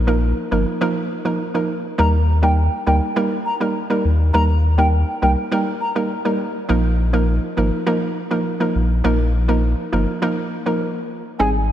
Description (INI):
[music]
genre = dancehall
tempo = 102 BPM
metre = 4/4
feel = straight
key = unclear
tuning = A4 = 440 Hz
[part]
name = warm sub bass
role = bass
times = 0.0-11.7 s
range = G1 to Eb2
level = -17 LUFS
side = left 1 dB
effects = none
[part]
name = hollow square pluck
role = accompaniment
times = 0.1-11.5 s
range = F3 to Bb4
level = -20 LUFS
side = right 2 dB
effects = chorus
[part]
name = baroque flute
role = melody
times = 2.0-5.9, 11.4-11.5 s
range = G5 to Bb5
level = -23 LUFS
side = left 1 dB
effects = analog delay
[sound]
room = moderate lush hall reverb, RT60 3.0 s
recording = dreamy mix soaked in reverb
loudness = -17 LUFS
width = side -11 dB against mid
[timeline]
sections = 0.0-11.4 A section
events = stop 10.8-11.4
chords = 0.0 Bbsus4; 2.0 Eb; 6.7 Bbsus4